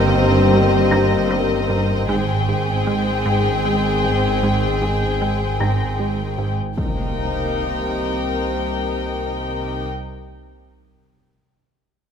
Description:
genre	cinematic, suspense film score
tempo	77 BPM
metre	3/4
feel	straight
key	C minor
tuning	A4 = 435 Hz
part	warm studio violin section	melody	0.0-9.9 s	Eb5 to G5	-27 LUFS	left 6 dB	none
part	warm symphonic violin section	second line	0.0-9.9 s	Ab4 to Bb4	-27 LUFS	left 5 dB	none
part	rich studio viola section	accompaniment	0.0-9.9 s	C4 to Eb4	-28 LUFS	right 1 dB	none
part	clear trombone section	sustained chords	0.0-9.9 s	Eb3 to Bb3	-29 LUFS	right 3 dB	none
part	mellow French horn section	sustained chords	0.0-9.9 s	C4 to Ab4	-25 LUFS	left 6 dB	none
part	rich symphonic cello section	bass	0.0-9.9 s	G2 to C3	-26 LUFS	right 3 dB	none
part	warm symphonic double bass section	bass	0.0-9.9 s	G1 to C2	-25 LUFS	right 3 dB	none
part	analog drone	drone	0.0-9.9 s	G1 to C2	-30 LUFS	left 1 dB	chorus
part	felt-muted upright piano	texture	0.0-6.8 s	Bb5 to Bb6	-31 LUFS	left 1 dB	none
part	plucky analog bass	riff	0.1-6.6 s	G2 to Ab3	-24 LUFS	right 2 dB	none
part	impact	sound effects	6.8-10.6 s	none	-27 LUFS	left 1 dB	none
room	light reverb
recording	none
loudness	-17 LUFS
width	side -7 dB against mid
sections	0.0-6.8 A section; 6.8-9.1 B section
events	impact 6.8-9.1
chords	0.0 Cm7/G; 2.1 Abmaj7; 6.8 Cm7

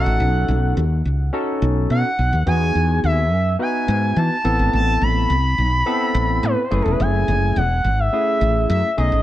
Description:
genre	early-eighties boogie funk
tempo	106 BPM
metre	4/4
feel	straight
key	unclear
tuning	A4 = 439 Hz
part	expressive portamento lead	melody	0.0-9.2 s	A4 to B5	-21 LUFS	equal	chorus
part	barky tine electric piano	accompaniment	0.0-9.2 s	A3 to B4	-24 LUFS	left 1 dB	overdrive, wide subtle chorus
part	woody fretless electric bass	bass	0.0-9.2 s	E1 to E3	-18 LUFS	equal	lush chorus
room	light reverb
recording	dark, warm production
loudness	-16 LUFS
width	side -14 dB against mid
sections	0.0-9.2 A section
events	none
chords	0.0 B7; 2.5 Emaj7; 4.4 Amadd9; 6.7 F#m7

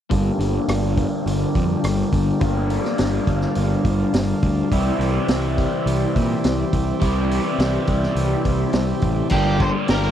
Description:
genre	psychedelic rock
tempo	104 BPM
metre	4/4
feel	straight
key	G dorian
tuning	A4 = 438 Hz
part	combo organ	sustained chords	0.1-10.1 s	Bb4 to A5	-31 LUFS	right 6 dB	low-pass filter
part	crunchy overdriven guitar	riff	0.1-10.1 s	G2 to G4	-22 LUFS	left 1 dB	phaser, low-pass filter
part	fuzz picked electric bass	bass	0.1-10.1 s	G1 to Bb2	-22 LUFS	equal	overdrive
part	vintage drum kit	drums	0.1-10.0 s	crash cymbal, hi-hat, kick drum, rim click, snare drum	-24 LUFS	equal	none
part	octave-fuzz lead guitar	melody	9.3-10.1 s	G4 to C5	-23 LUFS	right 2 dB	distortion, slapback echo
room	little or no reverb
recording	dry, close 1970s-style studio recording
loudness	-18 LUFS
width	side -10 dB against mid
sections	0.1-9.3 A section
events	filter sweep 0.1-9.3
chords	0.1 Gmadd9; 4.7 Cadd9; 9.3 Gmadd9

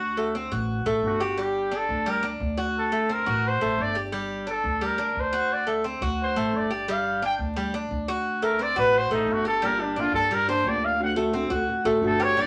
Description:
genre	latin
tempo	175 BPM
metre	4/4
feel	straight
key	G minor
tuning	A4 = 441 Hz
part	warm trumpet	melody	0.0-12.5 s	D4 to G5	-27 LUFS	equal	none
part	Cuban tres	arpeggios	0.0-12.5 s	G3 to G4	-30 LUFS	equal	none
part	upright bass	bass	0.0-12.5 s	G1 to G2	-35 LUFS	equal	none
part	nylon-string guitar	accompaniment	9.6-12.5 s	D3 to G4	-30 LUFS	equal	none
room	wet small room reverb, RT60 0.5 s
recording	vinyl crackle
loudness	-25 LUFS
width	mono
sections	0.0-12.5 A section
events	trumpet solo 0.0-12.5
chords	0.0 D7; 1.4 G5; 2.8 D7; 4.1 Gm; 5.5 D7; 6.9 G5; 8.3 D7; 9.6 Gm7; 11.0 D7

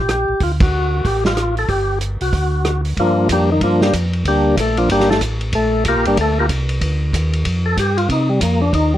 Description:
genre	soul jazz organ trio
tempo	188 BPM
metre	4/4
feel	swing 62% on 8ths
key	G minor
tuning	A4 = 439 Hz
part	percussive tonewheel organ	melody	0.0-9.0 s	Eb3 to Bb4	-17 LUFS	left 1 dB	slow rotary speaker
part	mellow tonewheel organ	bass	0.0-9.0 s	G1 to C3	-19 LUFS	equal	slow rotary speaker
part	warm soul drum kit	drums	0.1-8.8 s	hi-hat, kick drum, ride cymbal, rim click, snare drum	-22 LUFS	right 1 dB	none
room	light reverb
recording	worn, warbling old tape, cassette tape, warbly pitch drift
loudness	-14 LUFS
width	side -12 dB against mid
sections	0.0-3.0 A section; 3.0-9.0 B section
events	band accent 0.6; tonewheel organ solo 3.0-9.0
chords	0.4 D; 1.7 Gsus4; 2.3 D; 3.0 Gm7; 8.1 Cm9

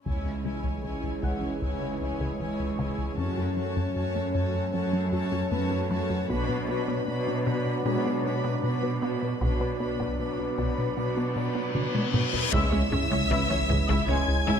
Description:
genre	cinematic, hybrid orchestral and electronic film score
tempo	77 BPM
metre	4/4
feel	straight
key	B dorian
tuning	A4 = 440 Hz
part	warm chamber violin section	second line	0.1-14.6 s	B4 to B5	-37 LUFS	left 4 dB	none
part	warm symphonic viola section	accompaniment	0.1-14.6 s	G#3 to E5	-36 LUFS	equal	none
part	mellow French horn section	sustained chords	0.1-14.4 s	F#3 to E4	-36 LUFS	left 4 dB	none
part	sweeping resonant pad	sustained chords	0.1-14.6 s	E3 to D5	-35 LUFS	equal	wide subtle chorus
part	resonant blip pluck	arpeggios	0.1-14.6 s	C#3 to B4	-36 LUFS	equal	phaser, tape echo
part	plucky analog bass	riff	0.1-14.6 s	C#2 to B3	-32 LUFS	left 2 dB	none
part	dark symphonic cello section	bass	0.1-14.6 s	C#2 to B2	-32 LUFS	right 3 dB	none
part	taiko ensemble	drums	0.1-1.6, 6.3-14.6 s	none	-31 LUFS	equal	none
part	sub drop and reverse cymbal	sound effects	0.1-3.2, 11.0-14.6 s	none	-36 LUFS	left 1 dB	none
part	felt-muted upright piano	texture	1.2-14.6 s	G#3 to F#5	-41 LUFS	left 4 dB	none
part	warm symphonic violin section	melody	12.5-14.6 s	E6 to G#6	-32 LUFS	left 1 dB	none
part	bright trombone section	sustained chords	12.5-14.4 s	C#3 to G#3	-37 LUFS	right 4 dB	none
part	pure sine sub bass	bass	12.5-14.6 s	C#2	-32 LUFS	right 1 dB	none
part	rich symphonic double bass section	bass	12.5-14.6 s	C#2	-33 LUFS	right 4 dB	none
room	moderate scoring stage reverb, RT60 1.9 s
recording	none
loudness	-25 LUFS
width	side -7 dB against mid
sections	0.1-12.5 A section; 12.5-14.6 B section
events	impact 0.1-3.2, 12.5-14.6; reverse cymbal 11.0-12.5; drum fill 11.8-12.5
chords	0.1 C#m; 3.2 F#m; 6.3 Bm; 12.5 C#m

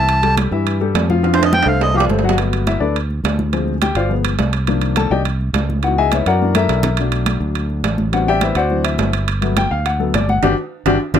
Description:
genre	Afro-Cuban jazz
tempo	209 BPM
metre	4/4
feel	straight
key	G major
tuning	A4 = 440 Hz
part	melodica	melody	0.0-2.0 s	G4 to A5	-16 LUFS	right 1 dB	none
part	warm grand piano	accompaniment	0.0-11.2 s	Eb3 to A5	-18 LUFS	left 6 dB	none
part	fingered electric bass	bass	0.0-11.2 s	G1 to G2	-19 LUFS	right 1 dB	none
part	congas	percussion	0.1-11.2 s	none	-23 LUFS	equal	none
part	timbales	percussion	0.1-11.2 s	none	-22 LUFS	right 11 dB	none
room	light reverb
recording	close, detailed microphones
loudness	-14 LUFS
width	side -9 dB against mid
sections	0.0-2.4 A section; 2.4-11.2 A section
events	melodica solo 0.0-2.4; drum fill 1.2-2.4, 6.6-7.0, 10.4-11.2; grand piano solo 2.4-11.2; band accent 10.4-11.2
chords	0.1 C6; 1.2 Fadd9; 2.4 Gmaj9; 3.5 Dm7b5; 4.1 G7b9; 4.7 Cm11; 5.8 C#m9; 6.4 F#7alt; 7.0 Bm7; 8.1 Am11; 8.7 D7; 9.3 Gmaj9

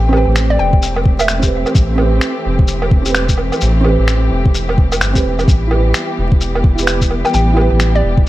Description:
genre	future garage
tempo	129 BPM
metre	4/4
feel	swing 61% on 16ths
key	A minor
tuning	A4 = 443 Hz
part	felt-muted upright piano	accompaniment	0.0-8.3 s	C4 to B4	-20 LUFS	right 4 dB	sidechain pumping, digital delay
part	muted studio string section	sustained chords	0.0-8.3 s	E3 to G4	-22 LUFS	left 1 dB	sidechain pumping
part	soft dub sub bass	bass	0.0-8.3 s	E1 to A1	-15 LUFS	equal	sidechain pumping
part	electronic woodblock, finger snaps and shaker	drums	0.1-7.9 s	none	-19 LUFS	right 1 dB	studio reverb
part	hollow square pluck	melody	0.5-1.7, 7.3-8.0 s	D5 to G5	-20 LUFS	left 1 dB	chorus, cassette tape, digital delay
part	electronic kick drum	drums	0.7-8.2 s	none	-12 LUFS	equal	studio reverb
room	digital ambience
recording	dark, warm production, vinyl crackle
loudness	-11 LUFS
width	side -16 dB against mid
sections	0.0-8.3 A section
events	none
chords	0.0 Am7; 5.5 Em

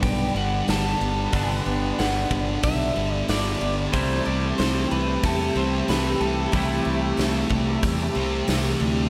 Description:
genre	rock, shoegaze and dream pop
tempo	92 BPM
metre	4/4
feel	straight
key	unclear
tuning	A4 = 443 Hz
part	electric guitar at the edge of break-up	melody	0.0-8.4 s	G4 to A5	-32 LUFS	equal	analog chorus, delay
part	soft string machine	sustained chords	0.0-9.1 s	G4 to D6	-34 LUFS	equal	ensemble chorus
part	picked twelve-string acoustic guitar	arpeggios	0.0-9.1 s	E3 to G4	-36 LUFS	equal	none
part	electric guitar at the edge of break-up	riff	0.0-9.1 s	G2 to E4	-31 LUFS	equal	reverse reverb
part	thick fuzz guitar	riff	0.0-9.1 s	G2 to C4	-31 LUFS	equal	distortion, lush chorus
part	fuzz fingered electric bass	bass	0.0-9.1 s	G1 to E2	-30 LUFS	equal	overdrive
part	big rock drum kit	drums	0.0-8.7 s	hi-hat, kick drum, snare drum	-31 LUFS	equal	none
room	wet huge ambient reverb, RT60 3.8 s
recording	dreamy mix soaked in reverb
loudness	-23 LUFS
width	mono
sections	0.0-9.1 A section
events	none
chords	0.0 Gmaj7; 3.9 C6

